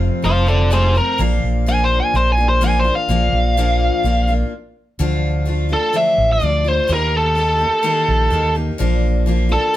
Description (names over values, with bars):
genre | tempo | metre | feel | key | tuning
folk rock and heartland rock | 126 BPM | 4/4 | straight | unclear | A4 = 441 Hz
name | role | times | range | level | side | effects
picked steel-string acoustic guitar | accompaniment | 0.0-9.8 s | F2 to G4 | -22 LUFS | left 3 dB | none
fingered electric bass | bass | 0.0-9.6 s | F1 to Eb2 | -18 LUFS | equal | none
biting lead guitar | melody | 0.2-9.8 s | Ab4 to Ab5 | -17 LUFS | equal | overdrive
room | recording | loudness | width
moderate studio reverb, RT60 0.7 s | band playing live in one room | -14 LUFS | side -14 dB against mid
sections
0.0-5.0 A section; 5.0-9.8 B section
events
lead electric guitar solo 0.0-5.0; stop 4.5-5.0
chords
0.0 F; 1.2 Bb; 5.0 Dm; 6.9 Eb; 8.8 Bb